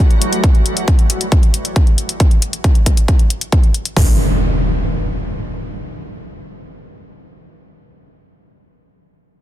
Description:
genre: uplifting trance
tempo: 136 BPM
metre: 4/4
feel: straight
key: none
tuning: none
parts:
  - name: big-room dance drum kit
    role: drums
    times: 0.0-4.1 s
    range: hi-hat, kick drum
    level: -12 LUFS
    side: equal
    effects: none
  - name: electronic hi-hat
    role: drums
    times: 0.1-3.9 s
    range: none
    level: -21 LUFS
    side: left 4 dB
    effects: sidechain pumping on hats
  - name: impact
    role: sound effects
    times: 4.0-8.5 s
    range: none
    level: -19 LUFS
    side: equal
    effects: none
room: little or no reverb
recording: dense, heavily limited modern master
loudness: -12 LUFS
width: side -13 dB against mid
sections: 0.0-4.0 A section; 4.0-7.5 B section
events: none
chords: none

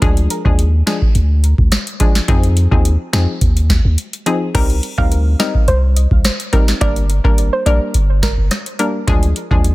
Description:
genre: dancehall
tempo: 106 BPM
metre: 4/4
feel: straight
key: C minor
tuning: A4 = 440 Hz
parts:
  - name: hollow square pluck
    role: accompaniment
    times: 0.0-9.7 s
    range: F3 to Bb4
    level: -20 LUFS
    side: left 2 dB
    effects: chorus
  - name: punchy sub bass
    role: bass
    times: 0.0-9.7 s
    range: G1 to F2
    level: -14 LUFS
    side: equal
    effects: none
  - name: booming analog drum machine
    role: drums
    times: 0.0-9.7 s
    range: crash cymbal, hi-hat, kick drum, rim click, snare drum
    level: -15 LUFS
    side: equal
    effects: none
  - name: soft round pluck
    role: melody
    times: 4.5-8.3 s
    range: Bb4 to F5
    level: -23 LUFS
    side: right 1 dB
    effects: chorus, tape echo
room: little or no reverb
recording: dense, heavily limited modern master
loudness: -12 LUFS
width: side -19 dB against mid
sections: 0.0-4.5 A section; 4.5-9.7 B section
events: none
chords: 0.0 Ddim; 2.3 Fm7; 4.5 Cm7; 6.8 Gm; 9.1 Ddim

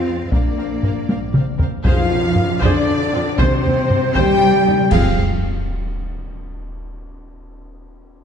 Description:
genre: cinematic, epic orchestral film score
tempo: 78 BPM (dotted quarters)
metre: 6/8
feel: straight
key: F dorian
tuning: A4 = 441 Hz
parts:
  - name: warm symphonic violin section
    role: melody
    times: 0.0-5.2 s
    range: C5 to G5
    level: -30 LUFS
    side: left 6 dB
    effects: none
  - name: dark French horn section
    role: sustained chords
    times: 0.0-5.1 s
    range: C4 to G4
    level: -21 LUFS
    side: left 5 dB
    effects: none
  - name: rich studio cello section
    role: bass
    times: 0.0-5.2 s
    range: C3 to C4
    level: -23 LUFS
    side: right 4 dB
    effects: none
  - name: warm studio double bass section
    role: bass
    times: 0.0-5.2 s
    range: Bb1 to F2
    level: -25 LUFS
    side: right 3 dB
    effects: none
  - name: rich symphonic violin section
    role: second line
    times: 0.1-5.2 s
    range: C5 to G5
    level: -28 LUFS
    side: left 3 dB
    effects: none
  - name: rich symphonic viola section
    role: accompaniment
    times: 0.1-5.2 s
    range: C4 to C5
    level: -28 LUFS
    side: equal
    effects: none
  - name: solo taiko drums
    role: drums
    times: 0.3-5.9 s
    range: none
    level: -20 LUFS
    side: equal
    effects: none
  - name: timpani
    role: percussion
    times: 1.8-5.2 s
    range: F2 to C3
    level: -26 LUFS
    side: right 1 dB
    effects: none
  - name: mellow hollow small flute group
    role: second line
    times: 1.9-5.2 s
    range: C5 to G5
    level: -28 LUFS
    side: right 1 dB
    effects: none
  - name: warm trumpet section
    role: stabs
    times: 1.9-5.1 s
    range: C5 to G5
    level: -24 LUFS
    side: equal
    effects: none
  - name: tam-tam, clash cymbals and concert bass drum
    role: percussion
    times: 1.9-5.9 s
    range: none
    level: -27 LUFS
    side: equal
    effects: none
room: wet scoring stage reverb, RT60 2.0 s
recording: dark, warm production, nothing above 11.0 kHz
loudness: -14 LUFS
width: side -8 dB against mid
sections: 0.0-1.9 A section; 1.9-4.9 B section; 4.9-6.5 C section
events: drum fill 1.1-1.9; band accent 1.9-2.4, 4.9-5.4; timpani fill 3.4-4.9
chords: 0.3 Bbadd9; 1.9 Fm; 3.4 Cm/Eb; 4.9 Fm

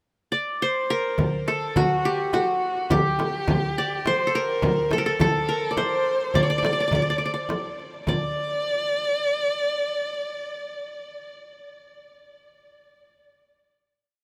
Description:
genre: Arabic maqam ensemble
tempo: 105 BPM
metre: 3/4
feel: straight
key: D maqam hijaz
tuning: A4 = 441 Hz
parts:
  - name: qanun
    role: melody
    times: 0.3-11.3 s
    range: F#4 to D5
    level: -27 LUFS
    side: equal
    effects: none
  - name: darbuka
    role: percussion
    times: 1.2-8.3 s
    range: none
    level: -30 LUFS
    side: equal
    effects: none
  - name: frame drum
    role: percussion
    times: 1.2-8.3 s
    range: none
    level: -30 LUFS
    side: equal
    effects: none
  - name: warm violin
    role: second line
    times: 1.5-11.3 s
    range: F#4 to D5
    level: -29 LUFS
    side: equal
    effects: none
room: moderate huge ambient reverb, RT60 7.7 s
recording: none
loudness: -24 LUFS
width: mono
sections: 0.0-1.2 pickup bar; 1.2-8.1 A section; 8.1-11.5 final note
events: none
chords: none

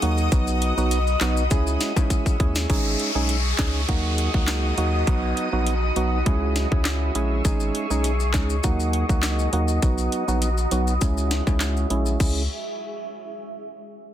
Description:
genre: dancehall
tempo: 101 BPM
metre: 4/4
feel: straight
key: C# dorian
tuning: A4 = 441 Hz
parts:
  - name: percussive organ stab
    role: accompaniment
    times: 0.0-12.4 s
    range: F#3 to G#4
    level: -26 LUFS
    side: right 4 dB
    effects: chorus, sidechain pumping, low-pass filter
  - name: granular cloud pad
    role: sustained chords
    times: 0.0-12.5 s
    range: F#4 to D#6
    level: -29 LUFS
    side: left 1 dB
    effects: built-in reverb, sidechain pumping, low-pass filter
  - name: saturated sub bass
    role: bass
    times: 0.0-12.5 s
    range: G#1 to D#2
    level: -24 LUFS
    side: equal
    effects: none
  - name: island pop drum kit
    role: drums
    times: 0.0-12.3 s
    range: crash cymbal, handclaps, hi-hat, kick drum, snare drum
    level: -23 LUFS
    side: equal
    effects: overdrive
  - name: maracas and timbales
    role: percussion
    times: 0.2-2.7, 7.4-12.5 s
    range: none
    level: -35 LUFS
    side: left 10 dB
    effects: none
  - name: downlifter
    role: sound effects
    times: 2.7-7.4 s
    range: none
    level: -30 LUFS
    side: left 1 dB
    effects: none
room: digital ambience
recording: dense, heavily limited modern master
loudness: -20 LUFS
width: side -11 dB against mid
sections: 0.0-2.7 A section; 2.7-12.2 B section; 12.2-14.1 C section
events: drum fill 2.1-2.7; filter sweep 2.7-12.2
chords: 0.3 B; 1.5 C#m; 2.7 G#sus4; 3.9 D#m; 5.1 B; 6.3 C#m; 7.4 G#sus4; 8.6 D#m; 9.8 B; 11.0 C#m

